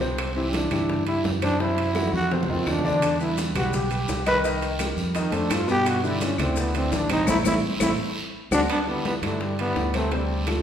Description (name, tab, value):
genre	Afro-Cuban jazz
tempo	169 BPM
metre	4/4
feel	straight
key	G major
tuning	A4 = 440 Hz
part	warm concert grand piano	accompaniment	0.0-10.6 s	B2 to Eb5	-27 LUFS	left 2 dB	none
part	fingered electric bass	bass	0.0-10.6 s	A1 to G2	-28 LUFS	right 1 dB	none
part	bongos	percussion	0.0-10.6 s	none	-36 LUFS	left 1 dB	none
part	congas	percussion	0.0-10.6 s	none	-33 LUFS	equal	none
part	guiro	percussion	0.0-10.6 s	none	-37 LUFS	right 2 dB	none
part	claves	percussion	0.2-10.6 s	none	-40 LUFS	left 3 dB	none
part	timbales	percussion	0.2-10.6 s	none	-34 LUFS	right 6 dB	none
part	growling trombone	melody	0.4-10.6 s	G3 to B4	-26 LUFS	equal	none
part	maracas	percussion	3.0-8.6 s	none	-39 LUFS	left 5 dB	none
part	growling tenor saxophone	second line	8.7-10.6 s	D3 to B3	-35 LUFS	right 3 dB	none
room	wet recital hall reverb, RT60 1.4 s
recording	recorded in a church or concert hall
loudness	-21 LUFS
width	side -9 dB against mid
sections	0.0-8.7 A section; 8.7-10.6 B section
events	trombone solo 0.0-8.7; drum fill 2.0-3.0, 7.3-8.7; band accent 7.3-8.7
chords	0.2 Cadd9; 1.6 Cadd11; 2.3 F5; 3.0 Em7; 4.4 Cm7; 5.2 F9; 5.9 G69; 7.3 Am; 8.0 D7; 8.7 G6; 10.1 Dm7